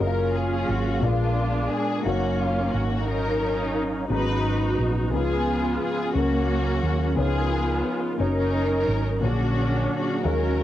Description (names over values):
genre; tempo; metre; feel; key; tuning
slow gospel; 59 BPM (dotted quarters); 6/8; straight; F# major; A4 = 439 Hz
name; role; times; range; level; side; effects
warm studio string section; melody; 0.0-10.6 s; G#3 to B4; -25 LUFS; left 1 dB; cassette tape
dark upright piano; accompaniment; 0.0-10.6 s; G#2 to A#5; -29 LUFS; left 5 dB; cassette tape
mellow tonewheel organ; sustained chords; 0.0-10.6 s; D3 to E#5; -31 LUFS; right 7 dB; fast rotary speaker, chorus vibrato, cassette tape
hollow-body short-scale fingered electric bass; bass; 0.0-10.6 s; F#1 to D#2; -26 LUFS; right 1 dB; none
room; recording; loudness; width
moderate studio reverb, RT60 0.5 s; home recording on cassette; -22 LUFS; side -12 dB against mid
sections
0.0-10.6 A section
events
none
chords
0.0 F#maj9; 1.0 A#7b9; 2.0 D#m9/F#; 4.1 G#m11; 5.1 C#7; 6.1 F#/C#; 7.2 C#13; 8.2 F#6; 9.2 A#7alt